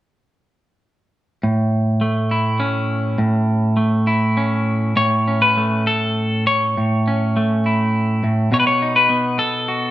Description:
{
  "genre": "folk, solo fingerstyle acoustic guitar",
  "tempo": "102 BPM",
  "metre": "3/4",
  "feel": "rubato",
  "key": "A major",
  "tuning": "A4 = 441 Hz",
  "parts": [
    { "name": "semi-hollow electric guitar", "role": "solo", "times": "1.4-9.9 s", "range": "A2 to C#5", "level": "-16 LUFS", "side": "equal", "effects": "spring reverb" }
  ],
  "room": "moderate studio reverb, RT60 0.5 s",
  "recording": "minimal, uncompressed stereo recording",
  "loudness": "-16 LUFS",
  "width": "side -14 dB against mid",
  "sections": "1.4-5.0 A section; 5.0-9.9 B section",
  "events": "none",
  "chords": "1.4 A; 8.5 B7"
}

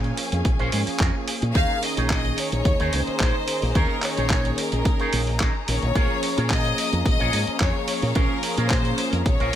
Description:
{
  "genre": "nu-disco, nu disco",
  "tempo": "109 BPM",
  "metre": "4/4",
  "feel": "straight",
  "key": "unclear",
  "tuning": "A4 = 440 Hz",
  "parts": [
    { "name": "mellow synth brass", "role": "accompaniment", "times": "0.0-9.6 s", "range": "Eb3 to Ab4", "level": "-30 LUFS", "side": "right 1 dB", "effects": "chorus, sidechain pumping" },
    { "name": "warm studio string section", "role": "sustained chords", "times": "0.0-9.6 s", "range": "Db4 to Bb5", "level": "-33 LUFS", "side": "left 2 dB", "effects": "sidechain pumping" },
    { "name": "electric guitar with an envelope filter", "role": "riff", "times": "0.0-9.6 s", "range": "Db4 to Db5", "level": "-31 LUFS", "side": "right 2 dB", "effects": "wide subtle chorus" },
    { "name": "fingered electric bass with an envelope filter", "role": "bass", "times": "0.0-9.6 s", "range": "Bb1 to Bb2", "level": "-25 LUFS", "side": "equal", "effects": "none" },
    { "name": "dusty soul sampler-style drum kit", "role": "drums", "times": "0.0-9.6 s", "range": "handclaps, hi-hat", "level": "-28 LUFS", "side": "right 1 dB", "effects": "none" },
    { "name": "electronic kick drum", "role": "drums", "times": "0.5-9.4 s", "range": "none", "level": "-23 LUFS", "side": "equal", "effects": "overdrive" },
    { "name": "clear studio violin section", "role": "melody", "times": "1.5-9.6 s", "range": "Bb4 to F5", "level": "-27 LUFS", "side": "left 2 dB", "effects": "ping-pong delay" }
  ],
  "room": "digital ambience",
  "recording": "none",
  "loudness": "-20 LUFS",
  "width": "side -11 dB against mid",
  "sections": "0.0-9.6 A section",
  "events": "none",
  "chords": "0.0 Bbm7; 1.6 Eb7sus4; 6.0 Bbm7"
}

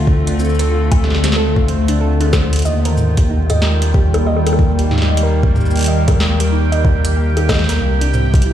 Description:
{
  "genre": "IDM",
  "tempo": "93 BPM",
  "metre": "4/4",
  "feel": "swing 62% on 16ths",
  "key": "Eb lydian",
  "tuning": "A4 = 439 Hz",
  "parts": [
    { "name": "warbly tape-like pad", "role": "sustained chords", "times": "0.0-8.5 s", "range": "D3 to Bb4", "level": "-21 LUFS", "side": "left 2 dB", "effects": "chorus, built-in reverb, phaser" },
    { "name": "harp-like synth pluck", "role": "arpeggios", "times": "0.0-8.5 s", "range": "C4 to Eb5", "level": "-23 LUFS", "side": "right 3 dB", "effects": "chorus, ping-pong delay" },
    { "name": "dark detuned saw bass", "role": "bass", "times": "0.0-8.5 s", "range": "C2 to Eb2", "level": "-15 LUFS", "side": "equal", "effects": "none" },
    { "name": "electronic kick drum", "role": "drums", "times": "0.1-8.4 s", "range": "none", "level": "-14 LUFS", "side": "equal", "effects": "none" },
    { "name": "booming analog drum machine", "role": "drums", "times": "0.3-8.5 s", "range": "bongos, hi-hat, shaker, snare drum, toms", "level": "-21 LUFS", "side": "left 1 dB", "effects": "dub echo" },
    { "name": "bubbling stepped-filter texture", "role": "texture", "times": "2.9-8.5 s", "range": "G5", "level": "-26 LUFS", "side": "right 2 dB", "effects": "chorus, built-in reverb, sidechain pumping" }
  ],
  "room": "little or no reverb",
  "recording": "played on a big sound system in a bare room, large studio reverb",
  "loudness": "-12 LUFS",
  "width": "side -11 dB against mid",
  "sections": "0.0-8.5 A section",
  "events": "none",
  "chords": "0.0 Dm7; 2.7 Eb; 7.8 Cadd9"
}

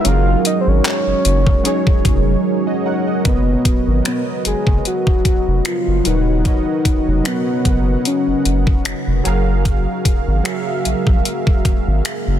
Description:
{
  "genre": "contemporary R&B",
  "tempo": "75 BPM",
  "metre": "4/4",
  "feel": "swing 54% on 16ths",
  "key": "unclear",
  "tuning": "A4 = 440 Hz",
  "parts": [
    { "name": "soft octave-layered synth lead", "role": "melody", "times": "0.0-8.8 s", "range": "B3 to E#5", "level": "-21 LUFS", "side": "left 2 dB", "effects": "chorus, ping-pong delay" },
    { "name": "warm analog keys", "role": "accompaniment", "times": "0.0-12.4 s", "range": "F#3 to F#5", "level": "-22 LUFS", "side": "right 3 dB", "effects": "chorus" },
    { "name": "deep dark ambient pad", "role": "sustained chords", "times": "0.0-12.4 s", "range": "C#3 to E#5", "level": "-24 LUFS", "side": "right 1 dB", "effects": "chorus, built-in reverb" },
    { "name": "detuned 8-bit digital drum machine", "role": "drums", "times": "0.0-12.3 s", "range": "finger snaps, handclaps, hi-hat, kick drum", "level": "-17 LUFS", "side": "equal", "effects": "overdrive, soft clipping on snare" },
    { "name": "saturated sub bass", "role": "bass", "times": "0.1-12.4 s", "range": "D#1 to A#1", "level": "-17 LUFS", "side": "equal", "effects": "none" }
  ],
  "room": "little or no reverb",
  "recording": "dense, heavily limited modern master",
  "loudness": "-14 LUFS",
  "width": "side -10 dB against mid",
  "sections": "0.0-3.3 A section; 3.3-12.4 B section",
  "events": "break 2.5-3.3",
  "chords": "0.1 F#69; 3.3 Bmaj9; 9.3 F#maj9"
}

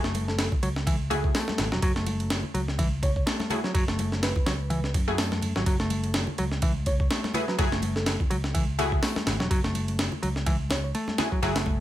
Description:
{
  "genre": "breakbeat, breaks",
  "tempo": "125 BPM",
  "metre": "4/4",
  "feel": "swing 56% on 16ths",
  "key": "F# minor",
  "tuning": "A4 = 440 Hz",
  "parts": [
    { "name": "picked electric bass", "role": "riff", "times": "0.0-11.8 s", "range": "E3 to A3", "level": "-31 LUFS", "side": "equal", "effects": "tube saturation, digital delay" },
    { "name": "orchestra-hit-like synth stab", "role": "stabs", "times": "0.0-11.6 s", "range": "A3 to G#4", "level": "-31 LUFS", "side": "left 2 dB", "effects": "built-in reverb, digital delay" },
    { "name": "picked electric bass", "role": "bass", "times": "0.0-11.8 s", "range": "E1 to F#2", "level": "-30 LUFS", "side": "equal", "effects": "tube saturation" },
    { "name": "breakbeat sampler-style drum kit", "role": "drums", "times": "0.0-11.8 s", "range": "hi-hat, kick drum, ride cymbal, snare drum", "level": "-27 LUFS", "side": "equal", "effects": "studio ambience" },
    { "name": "congas", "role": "percussion", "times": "0.1-11.8 s", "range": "none", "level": "-38 LUFS", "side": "left 2 dB", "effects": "none" },
    { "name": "bell-like FM electric piano", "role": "melody", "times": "0.3-10.9 s", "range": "A4 to C#5", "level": "-36 LUFS", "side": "right 2 dB", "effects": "chorus, AM radio sound, digital delay" }
  ],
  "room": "little or no reverb",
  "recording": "none",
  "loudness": "-24 LUFS",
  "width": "side -13 dB against mid",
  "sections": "0.0-11.8 A section",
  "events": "none",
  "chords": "0.0 F#m9"
}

